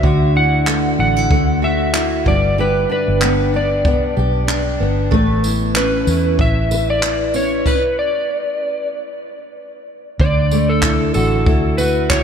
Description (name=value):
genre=acoustic pop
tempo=94 BPM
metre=4/4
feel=swing 55% on 16ths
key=unclear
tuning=A4 = 440 Hz
part: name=electric slide guitar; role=melody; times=0.0-12.2 s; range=A4 to F#5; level=-20 LUFS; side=equal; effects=diffuse ambient delay
part: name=fingerpicked steel-string acoustic guitar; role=accompaniment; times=0.0-12.2 s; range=G2 to B4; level=-19 LUFS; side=equal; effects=double-tracked left and right
part: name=vintage muted fingered electric bass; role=bass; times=0.0-12.2 s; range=G1 to E2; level=-19 LUFS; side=equal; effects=none
part: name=jazz brush drum kit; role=drums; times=0.0-12.2 s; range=crash cymbal, handclaps, kick drum, tambourine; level=-20 LUFS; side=equal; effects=none
room=moderate cathedral reverb, RT60 5.1 s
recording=dreamy mix soaked in reverb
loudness=-14 LUFS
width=side -7 dB against mid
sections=0.0-10.2 A section; 10.2-12.2 B section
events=stop 7.7-10.2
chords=0.0 Dadd9; 2.3 G; 5.1 Aadd9; 7.7 N.C.; 10.2 Dadd9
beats=| 0.03 0.67 1.31 1.94 | 2.58 3.21 3.85 4.48 | 5.12 5.75 6.39 7.02 | 7.66 8.29 8.93 9.56 | 10.20 10.83 11.47 12.10